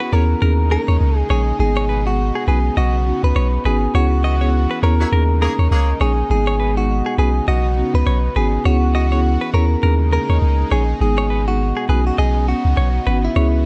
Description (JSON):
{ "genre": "afrobeats", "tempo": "102 BPM", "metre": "4/4", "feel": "swing 58% on 16ths", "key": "unclear", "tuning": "A4 = 440 Hz", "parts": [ { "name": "direct-recorded clean electric guitar", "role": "melody", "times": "0.0-13.7 s", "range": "E4 to B4", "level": "-25 LUFS", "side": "equal", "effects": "none" }, { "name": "lush unison pad", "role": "sustained chords", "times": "0.0-13.7 s", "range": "B2 to F#4", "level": "-33 LUFS", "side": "equal", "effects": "chorus" }, { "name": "direct-recorded clean electric guitar", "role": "riff", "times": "0.0-13.5 s", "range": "G#4 to D#5", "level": "-30 LUFS", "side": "equal", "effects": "spring reverb" }, { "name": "marimba with soft mallets", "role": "accompaniment", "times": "0.1-13.7 s", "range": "G#3 to G#4", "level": "-26 LUFS", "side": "equal", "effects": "none" }, { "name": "punchy sub bass", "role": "bass", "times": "0.1-13.7 s", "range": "G#1 to D#2", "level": "-19 LUFS", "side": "equal", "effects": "none" }, { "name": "warm horn section", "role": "second line", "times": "5.0-5.9 s", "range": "F#3 to C#5", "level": "-29 LUFS", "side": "equal", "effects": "none" } ], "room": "small room ambience", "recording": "none", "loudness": "-17 LUFS", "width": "mono", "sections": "0.0-13.7 A section", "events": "band accent 3.9-6.3", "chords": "0.4 D#7sus4; 1.6 G#m; 2.5 Badd9; 3.9 F#7sus4/C#; 5.1 D#7sus4; 6.3 G#m; 7.2 Badd9; 8.7 F#7sus4/C#; 9.8 D#7sus4; 11.0 G#m; 11.9 Badd9" }